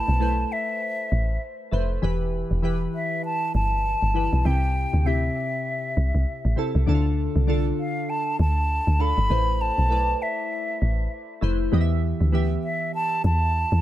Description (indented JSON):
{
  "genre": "afrobeats",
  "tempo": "99 BPM",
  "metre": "4/4",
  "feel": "swing 58% on 16ths",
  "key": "unclear",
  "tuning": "A4 = 441 Hz",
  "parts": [
    { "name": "hollow concert flute", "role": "melody", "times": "0.0-13.8 s", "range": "E5 to B5", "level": "-26 LUFS", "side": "equal", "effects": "analog delay" },
    { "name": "glassy digital keys", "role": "accompaniment", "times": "0.0-13.8 s", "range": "C3 to E5", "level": "-28 LUFS", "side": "left 1 dB", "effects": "chorus, phaser" },
    { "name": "deep log drum bass", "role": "bass", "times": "0.1-13.8 s", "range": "E1 to E2", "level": "-22 LUFS", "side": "equal", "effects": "none" }
  ],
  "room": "light reverb, small room ambience",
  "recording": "echo-heavy mix",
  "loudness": "-21 LUFS",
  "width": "side -13 dB against mid",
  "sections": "0.0-13.8 A section",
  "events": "none",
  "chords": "0.0 Amadd9; 2.0 Em; 4.5 C; 6.9 Dm; 9.3 Amadd9; 11.7 Em",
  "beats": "0.21 0.82 1.42 | 2.03 2.64 3.24 3.85 | 4.45 5.06 5.67 6.27 | 6.88 7.48 8.09 8.70 | 9.30 9.91 10.51 11.12 | 11.73 12.33 12.94 13.54"
}